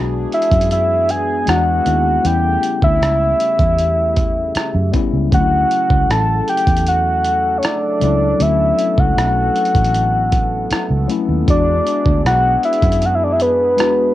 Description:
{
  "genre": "contemporary R&B",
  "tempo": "78 BPM",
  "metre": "4/4",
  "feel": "straight",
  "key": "D major",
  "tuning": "A4 = 439 Hz",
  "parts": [
    { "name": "mellow tine electric piano", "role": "accompaniment", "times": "0.0-14.1 s", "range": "F#3 to F#4", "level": "-23 LUFS", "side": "left 9 dB", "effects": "medium stereo tremolo, cassette tape" },
    { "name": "warm analog pad", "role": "sustained chords", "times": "0.0-14.1 s", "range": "C#3 to A4", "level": "-27 LUFS", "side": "right 2 dB", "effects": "chorus, cassette tape" },
    { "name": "vintage muted fingered electric bass", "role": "bass", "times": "0.0-14.1 s", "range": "A1 to F#2", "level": "-19 LUFS", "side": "right 1 dB", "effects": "none" },
    { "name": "soft octave-layered synth lead", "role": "melody", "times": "0.3-14.1 s", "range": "B4 to A5", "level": "-16 LUFS", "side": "equal", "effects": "chorus, cassette tape, analog delay" },
    { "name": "dusty soul sampler-style drum kit", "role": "drums", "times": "0.3-14.0 s", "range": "hi-hat, kick drum, rim click", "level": "-19 LUFS", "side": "right 1 dB", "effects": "cassette tape" }
  ],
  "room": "light reverb",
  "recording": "home recording on cassette",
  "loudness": "-13 LUFS",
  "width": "side -14 dB against mid",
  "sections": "0.0-14.1 A section",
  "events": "none",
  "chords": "0.0 E7; 2.2 A7; 5.3 Dmaj7; 11.5 E7"
}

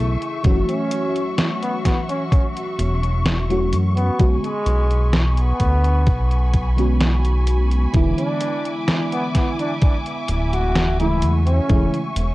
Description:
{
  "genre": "vaporwave",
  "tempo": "64 BPM",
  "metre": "4/4",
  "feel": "straight",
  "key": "B dorian",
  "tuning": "A4 = 440 Hz",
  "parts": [
    { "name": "mellow flugelhorn", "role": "melody", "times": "0.0-12.0 s", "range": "G#3 to F#4", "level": "-26 LUFS", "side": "equal", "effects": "tape echo" },
    { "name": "FM electric piano with soft pad layer", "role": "accompaniment", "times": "0.0-12.0 s", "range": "C#3 to G#4", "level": "-24 LUFS", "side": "equal", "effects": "analog chorus, tape echo" },
    { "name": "warm studio string section", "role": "sustained chords", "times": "0.0-12.3 s", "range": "F#4 to D6", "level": "-29 LUFS", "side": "left 1 dB", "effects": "none" },
    { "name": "chorused synth bass", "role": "bass", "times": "0.0-12.3 s", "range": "D1 to F#2", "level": "-18 LUFS", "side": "equal", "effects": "tube saturation" },
    { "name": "detuned 8-bit digital drum machine", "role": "drums", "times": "0.2-12.3 s", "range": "hi-hat, snare drum", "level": "-23 LUFS", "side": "equal", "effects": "studio reverb" },
    { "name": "electronic kick drum", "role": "drums", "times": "0.4-11.9 s", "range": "none", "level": "-18 LUFS", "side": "equal", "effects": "studio reverb" }
  ],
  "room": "little or no reverb",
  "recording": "dry, gritty hardware recording, cassette tape",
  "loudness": "-17 LUFS",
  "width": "side -18 dB against mid",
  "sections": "0.0-12.3 A section",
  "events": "none",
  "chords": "0.4 F#m7; 4.2 Bm69; 7.9 E7; 11.2 Amaj7/E"
}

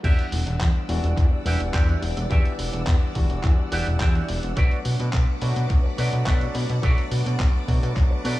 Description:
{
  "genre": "nu-disco, nu disco",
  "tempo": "106 BPM",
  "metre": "4/4",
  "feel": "straight",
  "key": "E minor",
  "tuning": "A4 = 440 Hz",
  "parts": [
    { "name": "barky tine electric piano", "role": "accompaniment", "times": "0.0-8.4 s", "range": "E3 to F#5", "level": "-31 LUFS", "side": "equal", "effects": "medium stereo tremolo, analog delay" },
    { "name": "string machine, full ensemble", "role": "sustained chords", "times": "0.0-8.4 s", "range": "B4 to E6", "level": "-36 LUFS", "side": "left 1 dB", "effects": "ensemble chorus, sidechain pumping" },
    { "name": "electric guitar with an envelope filter", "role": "riff", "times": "0.0-8.4 s", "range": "F#4 to E5", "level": "-32 LUFS", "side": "right 3 dB", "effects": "analog chorus, analog delay" },
    { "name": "fat analog bass", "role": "bass", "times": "0.0-8.4 s", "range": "E1 to B2", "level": "-24 LUFS", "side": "equal", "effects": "none" },
    { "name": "dusty soul sampler-style drum kit", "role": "drums", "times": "0.0-8.4 s", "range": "crash cymbal, handclaps, hi-hat", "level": "-34 LUFS", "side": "equal", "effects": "analog delay" },
    { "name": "electronic kick drum", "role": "drums", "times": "0.0-8.1 s", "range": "none", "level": "-20 LUFS", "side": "equal", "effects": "none" }
  ],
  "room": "digital ambience",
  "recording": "echo-heavy mix, small room ambience",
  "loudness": "-20 LUFS",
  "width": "side -16 dB against mid",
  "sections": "0.0-8.4 A section",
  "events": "drop 0.0-8.4",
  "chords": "0.0 Em9; 4.6 Bm7"
}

